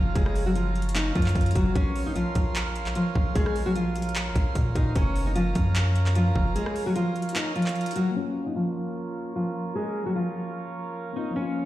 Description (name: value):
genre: hip hop, trap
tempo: 150 BPM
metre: 4/4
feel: half-time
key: Bb minor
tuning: A4 = 440 Hz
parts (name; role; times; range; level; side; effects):
- fingerpicked steel-string acoustic guitar; melody; 0.0-11.6 s; F3 to Eb5; -28 LUFS; equal; low-pass filter, ping-pong delay
- pedal harmonium; sustained chords; 0.0-11.7 s; F3 to C6; -35 LUFS; right 4 dB; low-pass filter
- long sustained 808-style bass; bass; 0.0-6.6 s; Gb1 to Bb2; -26 LUFS; equal; none
- trap drum kit; drums; 0.2-8.1 s; handclaps, hi-hat, kick drum, rim click; -27 LUFS; equal; overdrive
- mellow tine electric piano; accompaniment; 8.1-11.7 s; F3 to F4; -34 LUFS; left 5 dB; medium stereo tremolo, low-pass filter
room: digital ambience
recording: played on a big sound system in a bare room, stone room reverb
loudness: -23 LUFS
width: side -14 dB against mid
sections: 0.0-8.2 A section; 8.2-11.7 B section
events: break 6.6-8.2; filter sweep 8.2-11.7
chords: 0.0 Gbmaj7; 1.8 Bbmadd9; 5.0 Gbmaj7; 8.2 Bbm